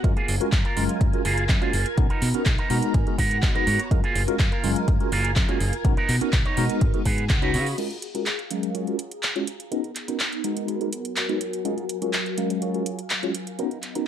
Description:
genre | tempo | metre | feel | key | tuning
filtered disco house | 124 BPM | 4/4 | straight | F# major | A4 = 441 Hz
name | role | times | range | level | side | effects
tine electric piano | accompaniment | 0.0-14.0 s | F#3 to E#5 | -27 LUFS | left 1 dB | medium stereo tremolo, phaser, sidechain pumping, low-pass filter
phased string machine | sustained chords | 0.0-14.1 s | F#3 to A#5 | -33 LUFS | left 1 dB | ensemble chorus, phaser, sidechain pumping, low-pass filter
electric guitar with an envelope filter | riff | 0.0-14.1 s | A#3 to A#5 | -29 LUFS | right 4 dB | sidechain pumping, low-pass filter
fingered electric bass | bass | 0.0-7.7 s | F#1 to C#3 | -26 LUFS | equal | sidechain pumping, low-pass filter
electronic kick drum | drums | 0.0-7.4 s | none | -22 LUFS | equal | small room ambience
house drum kit | drums | 0.0-14.0 s | crash cymbal, handclaps, hi-hat | -29 LUFS | right 1 dB | sidechain pumping on hats, small room ambience, sidechain pumping on cymbals
room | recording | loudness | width
little or no reverb | none | -21 LUFS | side -10 dB against mid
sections
0.0-7.8 A section; 7.8-14.1 B section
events
clean electric guitar fill 2.5-3.9, 6.8-7.8; band accent 7.3; filter sweep 7.8-14.1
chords
0.0 F#maj9; 2.0 Bmaj7; 2.9 G#m9; 3.9 F#maj9; 5.8 Bmaj7; 6.8 G#m9; 7.3 C#9sus4; 7.8 F#maj9; 9.7 Bmaj7; 10.7 G#m9; 11.7 F#maj9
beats
| 0.04 0.52 1.01 1.49 | 1.98 2.46 2.94 3.43 | 3.91 4.39 4.88 5.36 | 5.85 6.33 6.82 7.30 | 7.78 8.27 8.75 9.23 | 9.72 10.20 10.69 11.17 | 11.65 12.14 12.62 13.11 | 13.59 14.07

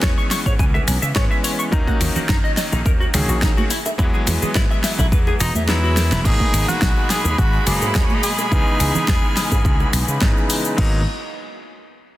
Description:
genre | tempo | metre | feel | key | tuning
nu-disco, nu disco | 106 BPM | 4/4 | straight | G# minor | A4 = 439 Hz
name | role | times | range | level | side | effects
bright electric grand piano | accompaniment | 0.0-11.0 s | B2 to G#4 | -25 LUFS | left 1 dB | sidechain pumping, low-pass filter, digital delay
clean electric guitar | riff | 0.0-6.2 s | D#3 to C#6 | -26 LUFS | left 1 dB | lush chorus, digital delay
slap bass with an envelope filter | bass | 0.0-11.0 s | E1 to C#3 | -21 LUFS | equal | none
electronic kick drum | drums | 0.0-10.9 s | none | -19 LUFS | equal | small room ambience
pop drum kit | drums | 0.0-10.9 s | crash cymbal, finger snaps, hi-hat, shaker, snare drum | -24 LUFS | left 1 dB | small room ambience
egg shaker, bongos and congas | percussion | 0.0-10.8 s | none | -30 LUFS | right 4 dB | none
edgy tenor saxophone | melody | 5.4-10.2 s | C#4 to G#4 | -24 LUFS | equal | digital delay
muted studio violin section | sustained chords | 6.3-10.8 s | G#3 to B5 | -27 LUFS | equal | sidechain pumping, low-pass filter
room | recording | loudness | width
light reverb | dense, heavily limited modern master | -16 LUFS | side -15 dB against mid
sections
0.0-6.3 A section; 6.3-10.8 B section; 10.8-12.2 C section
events
kick drops out 5.7-6.3; drum fill 6.0; filter sweep on slap bass 6.3-10.8; filter sweep on electric grand piano 6.3-10.8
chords
0.0 C#m7; 1.7 D#m7; 3.7 Eadd9; 6.3 G#m7; 8.5 C#m7; 10.8 G#m7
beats
0.03 0.59 1.16 | 1.73 2.29 2.86 3.42 | 3.99 4.55 5.12 5.69 | 6.25 6.82 7.38 7.95 | 8.52 9.08 9.65 10.22 | 10.78

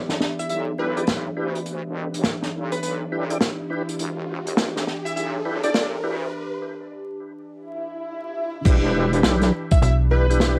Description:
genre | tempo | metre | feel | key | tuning
glitch hop | 103 BPM | 4/4 | swing 63% on 16ths | E minor pentatonic | A4 = 445 Hz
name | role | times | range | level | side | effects
warbly tape-like pad | sustained chords | 0.0-10.6 s | E3 to G4 | -35 LUFS | equal | chorus, built-in reverb, sidechain pumping, cassette tape
wobble bass | bass | 0.0-9.5 s | E1 to D2 | -30 LUFS | equal | chorus, high-pass filter
riser and swell | sound effects | 2.6-8.7 s | none | -36 LUFS | equal | none
airy breathy pad | texture | 0.0-6.3 s | B3 to E5 | -39 LUFS | equal | none
unplugged drum kit | drums | 0.1-10.6 s | crash cymbal, hi-hat, snare drum | -27 LUFS | equal | none
plucky unison lead | melody | 0.4-5.9, 9.7-10.6 s | B4 to E5 | -31 LUFS | equal | cassette tape, analog delay
tonewheel organ | stabs | 0.8-10.6 s | D4 to D5 | -29 LUFS | equal | overdrive, chorus vibrato, slow rotary speaker, sidechain pumping, low-pass filter, cassette tape, analog delay
electronic kick drum | drums | 8.7-9.8 s | none | -18 LUFS | equal | none
slap-like FM bass | bass | 9.8-10.6 s | B1 | -20 LUFS | equal | none
room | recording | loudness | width
moderate studio reverb, RT60 0.5 s | home recording on cassette, vinyl crackle, high-pass filter | -23 LUFS | mono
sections
0.0-8.7 A section; 8.7-10.6 B section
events
build-up 0.0-8.7; filter sweep 0.0-8.7; riser 2.6-6.3; break 6.3-8.7; swell 7.7-8.7; drop 8.7-10.6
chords
0.0 Em7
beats
0.50 1.08 | 1.67 2.25 2.83 3.41 | 4.00 4.58 5.16 5.74 | 6.33 6.91 7.49 8.07 | 8.65 9.24 9.82 10.40

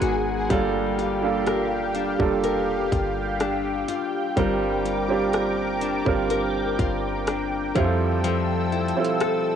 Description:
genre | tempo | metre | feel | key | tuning
contemporary R&B | 62 BPM | 4/4 | straight | G dorian | A4 = 440 Hz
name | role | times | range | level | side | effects
warm baby grand piano | accompaniment | 0.0-9.6 s | G3 to F5 | -25 LUFS | right 7 dB | cassette tape
lush unison pad | sustained chords | 0.0-9.6 s | G4 to E6 | -28 LUFS | equal | chorus, phaser, cassette tape
nylon-string guitar | arpeggios | 0.0-9.6 s | F3 to Bb4 | -27 LUFS | left 9 dB | cassette tape, tape echo
clean 808-style bass | bass | 0.0-8.9 s | F1 to F2 | -30 LUFS | equal | none
trap drum kit | drums | 0.0-9.4 s | hi-hat, kick drum, rim click | -28 LUFS | equal | cassette tape
room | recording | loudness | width
light reverb, digital ambience | home recording on cassette | -21 LUFS | side -8 dB against mid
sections
0.0-9.6 A section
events
none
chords
0.5 Gm7; 4.4 C9sus4/G; 7.8 Fmaj7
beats
| 0.50 1.47 2.43 3.40 | 4.37 5.34 6.30 7.27 | 8.24 9.21

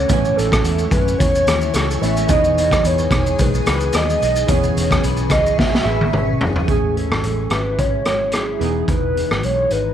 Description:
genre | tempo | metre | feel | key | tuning
indie pop, bedroom pop | 109 BPM | 4/4 | swing 55% on 16ths | E major | A4 = 438 Hz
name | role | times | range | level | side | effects
warbly nostalgic lead | melody | 0.0-9.9 s | G#4 to E5 | -20 LUFS | right 1 dB | tremolo, lush chorus, slapback echo
chorused retro synth keys | accompaniment | 0.0-9.9 s | E3 to G#5 | -27 LUFS | right 15 dB | none
electric guitar through a small old amp | accompaniment | 0.0-9.9 s | A2 to B4 | -26 LUFS | left 13 dB | analog chorus, vibrato effect
granular cloud pad | sustained chords | 0.0-6.7 s | G#4 to D#6 | -29 LUFS | left 1 dB | built-in reverb
vintage muted fingered electric bass | bass | 0.0-9.9 s | E1 to F#2 | -22 LUFS | equal | none
raw garage drum kit | drums | 0.1-9.8 s | hi-hat, kick drum, rim click, shaker, snare drum, toms | -20 LUFS | equal | none
room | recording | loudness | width
studio reverb | 1960s-style stereo with parts hard left and right | -15 LUFS | side -10 dB against mid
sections
0.0-6.7 A section; 6.7-9.9 B section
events
drum fill 5.6-6.7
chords
0.1 Amaj7; 2.3 Emaj7; 4.5 E6; 6.7 Amaj7; 8.6 Emaj7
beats
| 0.10 0.65 1.20 1.74 | 2.29 2.84 3.39 3.94 | 4.49 5.04 5.58 6.13 | 6.68 7.23 7.78 8.33 | 8.88 9.43

